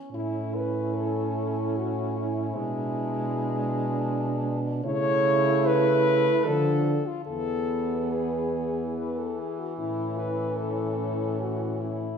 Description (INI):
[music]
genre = classical, lyrical piece for horn quartet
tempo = 69-80 BPM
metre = 3/4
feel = rubato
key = A major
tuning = A4 = 439 Hz
[part]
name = warm French horn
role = accompaniment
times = 0.0-12.2 s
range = E3 to C#4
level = -33 LUFS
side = left 2 dB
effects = none
[part]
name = warm French horn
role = melody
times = 0.1-12.2 s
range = E4 to C#5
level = -28 LUFS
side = left 3 dB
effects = none
[part]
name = mellow French horn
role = second line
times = 0.1-12.2 s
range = B3 to E4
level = -31 LUFS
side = right 6 dB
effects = none
[part]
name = mellow French horn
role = bass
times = 0.1-12.2 s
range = E2 to D3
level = -30 LUFS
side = right 1 dB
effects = none
[sound]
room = wet recital hall reverb, RT60 1.5 s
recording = heard from further back in the room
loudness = -24 LUFS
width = side -6 dB against mid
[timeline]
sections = 0.1-12.2 A section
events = none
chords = 0.1 A; 2.6 E7/B; 4.8 A/C#; 6.5 Dm; 7.3 E; 9.8 A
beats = | 0.12 0.96 1.78 | 2.56 3.31 4.08 | 4.85 5.65 6.46 | 7.29 8.12 8.97 | 9.79 10.59 11.40